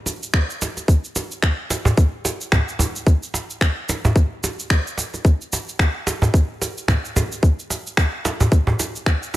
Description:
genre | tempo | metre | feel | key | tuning
downtempo | 110 BPM | 4/4 | swing 57% on 16ths | none | none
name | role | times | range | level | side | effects
electronic cabasa and finger snaps | drums | 0.1-9.4 s | none | -24 LUFS | right 1 dB | none
cajon | percussion | 0.1-9.4 s | none | -22 LUFS | right 1 dB | none
electronic kick drum | drums | 0.3-9.2 s | none | -15 LUFS | equal | none
room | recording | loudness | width
digital ambience | none | -18 LUFS | side -16 dB against mid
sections
0.0-9.4 A section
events
none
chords
none

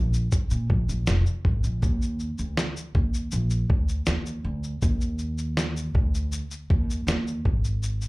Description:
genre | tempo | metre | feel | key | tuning
acoustic pop | 80 BPM | 4/4 | straight | unclear | A4 = 440 Hz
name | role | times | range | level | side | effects
upright bass | bass | 0.0-8.1 s | F1 to Bb2 | -26 LUFS | equal | none
dusty soul sampler-style drum kit | drums | 0.1-8.1 s | kick drum, shaker, snare drum | -25 LUFS | equal | none
room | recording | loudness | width
little or no reverb | live gig heard through the venue's PA, club ambience | -23 LUFS | side -23 dB against mid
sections
0.0-8.1 A section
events
none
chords
none

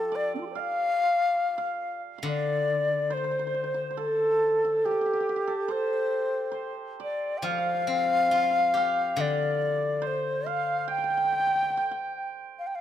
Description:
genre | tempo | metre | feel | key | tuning
chinese traditional, Chinese chamber ensemble | 70 BPM | 4/4 | rubato | unclear | A4 = 440 Hz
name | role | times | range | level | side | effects
reedy low xiao | melody | 0.0-12.8 s | C4 to G5 | -26 LUFS | left 2 dB | none
hammered dulcimer | second line | 0.0-12.8 s | F4 to G5 | -32 LUFS | right 4 dB | none
steel-string zither | accompaniment | 0.0-11.7 s | D3 to G4 | -33 LUFS | left 2 dB | none
room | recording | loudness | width
light reverb | close, detailed microphones | -24 LUFS | side -10 dB against mid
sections
0.0-12.8 A section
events
none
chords
none

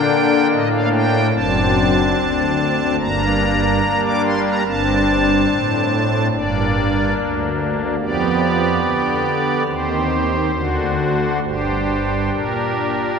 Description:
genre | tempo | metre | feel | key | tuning
classical, chorale-style piece for pipe organ | 72 BPM | 4/4 | rubato | G minor | A4 = 439 Hz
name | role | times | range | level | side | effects
pipe organ, strings celeste | solo | 0.0-13.2 s | F#1 to D6 | -16 LUFS | equal | none
room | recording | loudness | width
wet church reverb, RT60 2.7 s | minimal, uncompressed stereo recording | -16 LUFS | side -6 dB against mid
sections
0.0-13.2 A section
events
none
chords
0.0 Gm; 1.3 D7/F#; 3.0 Gm; 4.7 D5/G; 6.3 Gm; 8.0 G7/F; 9.7 Cm/Eb; 10.5 D7; 11.4 Gm

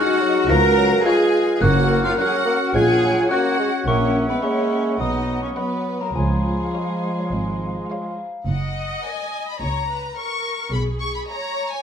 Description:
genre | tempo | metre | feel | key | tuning
cinematic | 107 BPM | 4/4 | straight | F# major | A4 = 440 Hz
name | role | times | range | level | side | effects
glockenspiel with soft plastic mallets | melody | 0.0-8.2 s | G#5 to A#6 | -27 LUFS | right 1 dB | none
rich chamber violin section | melody | 0.0-11.8 s | E#5 to C#6 | -29 LUFS | left 4 dB | none
dark clarinet | second line | 0.0-8.5 s | G#4 to E#5 | -30 LUFS | equal | none
dark cor anglais | second line | 0.0-8.2 s | G#3 to A#4 | -27 LUFS | right 3 dB | none
mellow concert flute | second line | 0.0-8.2 s | D#5 to F#5 | -31 LUFS | left 3 dB | none
rich studio violin section | second line | 0.0-11.7 s | G#4 to A#5 | -31 LUFS | left 1 dB | none
mellow bassoon | accompaniment | 0.0-8.2 s | E#3 to A#3 | -26 LUFS | right 1 dB | none
warm symphonic viola section | accompaniment | 0.0-11.8 s | G#4 to E5 | -31 LUFS | left 2 dB | none
mellow French horn section | sustained chords | 0.0-8.2 s | E#3 to F#4 | -23 LUFS | left 2 dB | none
rich studio cello section | bass | 0.0-11.2 s | C#2 to A#4 | -26 LUFS | left 1 dB | none
clear symphonic double bass section | bass | 0.5-11.2 s | F#1 to C#2 | -24 LUFS | right 1 dB | none
dark tuba | bass | 0.5-7.8 s | F#1 to C#2 | -26 LUFS | right 3 dB | none
room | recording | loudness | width
wet stone room reverb, RT60 1.1 s | none | -18 LUFS | side -8 dB against mid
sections
0.0-8.5 A section; 8.5-11.8 B section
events
none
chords
0.0 G#7(no3); 0.5 C#7; 1.6 F#; 2.7 F#/A#; 3.9 F#7/A#; 5.0 B; 6.2 C#; 8.5 F#; 10.7 B6

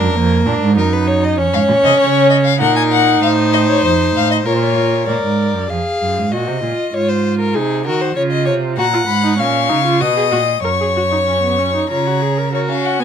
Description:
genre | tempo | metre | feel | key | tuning
classical, baroque-style fugue for string quartet | 97 BPM | 3/4 | straight | F# major from 8.8 s | A4 = 440 Hz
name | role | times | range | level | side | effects
warm violin | second line | 0.0-13.0 s | F#4 to F#5 | -18 LUFS | left 3 dB | none
warm viola | accompaniment | 0.0-13.0 s | Bb3 to A#4 | -19 LUFS | right 3 dB | none
warm cello | bass | 0.0-12.5 s | F2 to Eb3 | -18 LUFS | right 4 dB | none
rich violin | melody | 1.5-5.1, 8.8-13.0 s | C5 to D#6 | -18 LUFS | left 8 dB | none
room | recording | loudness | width
light reverb | close, detailed microphones | -13 LUFS | side -8 dB against mid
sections
0.0-5.1 A section; 5.1-12.5 B section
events
none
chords
0.0 Bb; 0.8 Ebm/Gb; 1.4 N.C.; 2.6 Ebm/Bb; 3.2 F/A; 4.5 Bbm; 5.1 Bb7; 6.3 Ebm/Bb; 6.9 Ab7; 8.2 Db; 8.8 F#; 10.0 B; 10.6 F#5; 11.9 C#; 12.5 F#

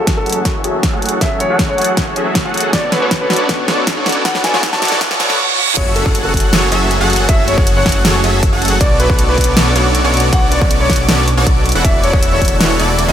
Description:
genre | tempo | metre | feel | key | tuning
future bass | 158 BPM | 4/4 | half-time | F# minor | A4 = 440 Hz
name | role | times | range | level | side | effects
warm grand piano | melody | 0.0-12.5 s | A4 to A5 | -21 LUFS | equal | sidechain pumping, tape echo
airy breathy pad | sustained chords | 0.2-13.1 s | D3 to F#4 | -28 LUFS | right 2 dB | chorus, sidechain pumping
Celtic harp | arpeggios | 0.0-13.1 s | E4 to D5 | -26 LUFS | left 6 dB | none
supersaw chords | riff | 0.0-13.1 s | E3 to F#5 | -17 LUFS | equal | sidechain pumping, low-pass filter, digital delay
wide detuned saw bass | bass | 0.0-13.1 s | E1 to B1 | -19 LUFS | equal | chorus, sidechain pumping, high-pass filter
riser, reverse cymbal and impact | sound effects | 3.0-7.3 s | none | -22 LUFS | right 3 dB | none
big-room dance drum kit | drums | 0.1-13.1 s | crash cymbal, hi-hat, snare drum | -18 LUFS | equal | none
electronic kick drum | drums | 0.1-12.5 s | none | -16 LUFS | equal | none
airy dreamy lead | arpeggios | 5.8-13.1 s | C#6 to F#6 | -25 LUFS | equal | chorus, sidechain pumping
room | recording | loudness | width
light reverb | high-pass filter | -11 LUFS | side -10 dB against mid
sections
0.0-5.8 A section; 5.8-13.1 B section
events
build-up 0.0-5.8; drum fill 0.0-5.4; filter sweep on supersaw synth 0.0-5.8; filter sweep on analog synth pad 0.0-5.8; filter sweep 0.0-5.8; riser 3.0-5.8; reverse cymbal 5.0-5.8; drop 5.8-13.1; impact 5.8-7.3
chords
0.0 F#m7; 2.7 Bm9; 5.6 N.C.; 5.8 F#m7; 8.8 Bm9; 11.7 E7sus4

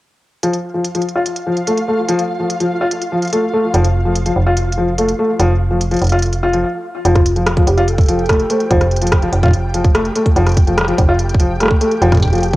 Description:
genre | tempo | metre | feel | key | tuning
IDM | 145 BPM | 4/4 | straight | F major | A4 = 442 Hz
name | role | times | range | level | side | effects
felt-muted upright piano | arpeggios | 0.4-12.6 s | F3 to F4 | -16 LUFS | left 1 dB | low-pass filter, cassette tape, tape echo
organic electronic drum kit | drums | 0.4-12.6 s | hi-hat, rim click | -22 LUFS | equal | small room ambience, cassette tape
flickering grainy texture | texture | 0.7-12.6 s | F4 to G5 | -26 LUFS | equal | built-in reverb, sidechain pumping, cassette tape
metallic FM bass | bass | 3.7-12.6 s | F1 | -16 LUFS | equal | none
warbly nostalgic lead | melody | 7.1-9.3 s | F4 to C5 | -22 LUFS | right 2 dB | lush chorus, cassette tape, analog delay
electronic kick drum | drums | 7.2-12.6 s | none | -13 LUFS | equal | small room ambience, cassette tape
room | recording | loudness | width
light reverb, digital ambience | home recording on cassette | -13 LUFS | side -17 dB against mid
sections
0.4-7.1 A section; 7.1-12.6 B section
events
filter sweep on felt piano 0.4-7.1; stop 6.6-7.1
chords
none

